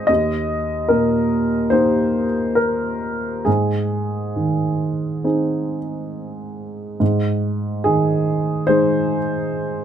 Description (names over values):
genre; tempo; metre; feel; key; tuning
neoclassical minimalist piano; 66-74 BPM; 4/4; rubato; Ab major; A4 = 440 Hz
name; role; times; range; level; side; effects
warm upright piano; solo; 0.0-9.8 s; Eb2 to Eb5; -18 LUFS; equal; none
room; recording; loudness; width
light reverb; none; -17 LUFS; side -9 dB against mid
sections
0.0-7.0 A section; 7.0-9.8 A section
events
none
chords
0.1 Eb; 3.5 Ab